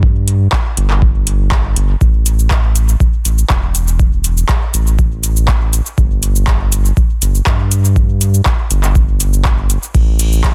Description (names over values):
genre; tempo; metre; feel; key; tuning
dub techno; 121 BPM; 4/4; straight; unclear; A4 = 440 Hz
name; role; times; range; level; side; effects
round analog bass; bass; 0.0-10.5 s; E1 to G2; -16 LUFS; equal; sidechain pumping
electronic kick drum; drums; 0.0-10.5 s; none; -16 LUFS; equal; overdrive
booming analog drum machine; drums; 0.3-10.5 s; handclaps, hi-hat, ride cymbal, shaker; -22 LUFS; equal; overdrive, dub echo
room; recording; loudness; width
little or no reverb; dense, heavily limited modern master; -13 LUFS; mono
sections
0.0-2.0 A section; 2.0-10.5 A section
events
none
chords
none